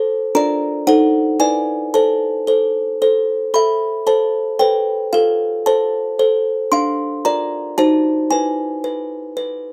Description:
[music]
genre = classical, lullaby for music box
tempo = 113 BPM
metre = 3/4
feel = straight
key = A minor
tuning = A4 = 440 Hz
[part]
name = music box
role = solo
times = 0.0-9.7 s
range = D4 to C6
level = -18 LUFS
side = equal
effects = none
[sound]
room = light reverb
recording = none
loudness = -17 LUFS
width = mono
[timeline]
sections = 0.0-3.5 A section; 3.5-9.7 B section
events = none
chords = 0.3 Bb/D; 0.9 D#dim7; 1.4 E7; 1.9 Am; 5.1 F; 6.7 Bb/D; 7.8 D#dim7; 8.3 E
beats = | 0.34 0.87 1.40 | 1.93 2.47 3.01 | 3.54 4.08 4.61 | 5.13 5.66 6.19 | 6.72 7.24 7.77 | 8.30 8.83 9.37

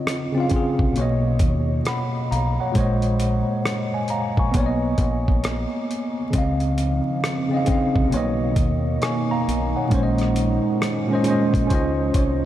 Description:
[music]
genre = lo-fi hip hop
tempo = 67 BPM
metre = 4/4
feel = swing 64% on 16ths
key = unclear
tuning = A4 = 442 Hz
[part]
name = tine electric piano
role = accompaniment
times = 0.0-12.5 s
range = Bb2 to Db6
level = -21 LUFS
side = equal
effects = fast stereo tremolo, cassette tape
[part]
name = dusty soul sampler-style drum kit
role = drums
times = 0.1-12.4 s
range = hi-hat, kick drum, rim click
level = -24 LUFS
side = equal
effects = none
[part]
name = deep dub fingered electric bass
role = bass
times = 0.8-12.5 s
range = Bb1 to Eb2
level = -25 LUFS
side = equal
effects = none
[part]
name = warbly tape-like pad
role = sustained chords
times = 6.9-12.5 s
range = Cb3 to Eb4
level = -28 LUFS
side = right 3 dB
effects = chorus, built-in reverb
[sound]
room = moderate huge ambient reverb, RT60 8.2 s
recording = dreamy mix soaked in reverb, vinyl crackle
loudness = -19 LUFS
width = side -12 dB against mid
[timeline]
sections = 0.0-12.5 A section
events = tine electric piano fill 11.7-12.5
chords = 0.0 Dbmaj9; 1.0 Cbmaj9; 2.7 Bbm11; 4.5 Cbmaj9; 6.3 Dbmaj9; 8.1 Cbmaj9; 9.9 Bbm11; 11.7 Dbmaj9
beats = 0.06 0.96 1.85 | 2.75 3.65 4.54 5.44 | 6.33 7.23 8.12 9.02 | 9.91 10.81 11.71

